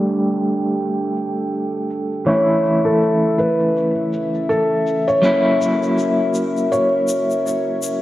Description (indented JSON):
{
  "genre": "trip hop",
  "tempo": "81 BPM",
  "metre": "4/4",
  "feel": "swing 57% on 16ths",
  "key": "unclear",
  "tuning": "A4 = 440 Hz",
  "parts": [
    { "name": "electric guitar at the edge of break-up", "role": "accompaniment", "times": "0.0-8.0 s", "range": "E3 to G4", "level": "-20 LUFS", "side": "equal", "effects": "tremolo, tape echo" },
    { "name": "dark analog pad", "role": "sustained chords", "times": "0.0-8.0 s", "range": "C#4 to G5", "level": "-22 LUFS", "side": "left 1 dB", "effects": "chorus, vintage 12-bit sampler grit" },
    { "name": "downlifter", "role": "sound effects", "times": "0.0-2.3 s", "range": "none", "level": "-42 LUFS", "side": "right 1 dB", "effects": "none" },
    { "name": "egg shaker", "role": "percussion", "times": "0.1-8.0 s", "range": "none", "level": "-33 LUFS", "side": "left 4 dB", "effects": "none" },
    { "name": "felt-muted upright piano", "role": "melody", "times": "2.3-8.0 s", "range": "A4 to C#5", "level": "-19 LUFS", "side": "equal", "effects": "tape echo" }
  ],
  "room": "wet plate reverb, RT60 2.2 s",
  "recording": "bright 1980s-style digital production, vinyl crackle, low-pass filter",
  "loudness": "-16 LUFS",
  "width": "side -14 dB against mid",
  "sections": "0.0-8.0 A section",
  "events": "filter sweep on analog synth pad 0.0-8.0; filter sweep 0.0-8.0",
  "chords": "0.0 Gsus2; 2.3 A; 5.2 F#7",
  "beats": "0.05 0.79 1.53 | 2.27 3.02 3.75 4.50 | 5.24 5.98 6.72 7.46"
}